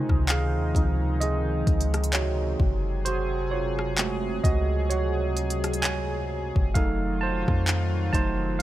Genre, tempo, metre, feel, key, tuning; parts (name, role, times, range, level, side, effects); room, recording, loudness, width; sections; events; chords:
contemporary R&B; 65 BPM; 4/4; swing 58% on 16ths; A4 = 444 Hz
mellow tine electric piano; accompaniment; 0.0-8.6 s; C3 to A5; -28 LUFS; right 4 dB
chorused pulse-width pad; sustained chords; 0.0-8.6 s; C3 to Ab4; -32 LUFS; left 2 dB
clean 808-style bass; bass; 0.0-8.6 s; F1 to F2; -27 LUFS; equal
smooth R&B drum kit; drums; 0.1-8.4 s; handclaps, hi-hat, kick drum, rim click; -26 LUFS; left 1 dB
little or no reverb; -23 LUFS; side -14 dB against mid
0.0-8.6 A section
tine electric piano solo 0.0-8.6
0.0 Dbmaj9; 2.6 Gbmadd9; 6.8 F7b9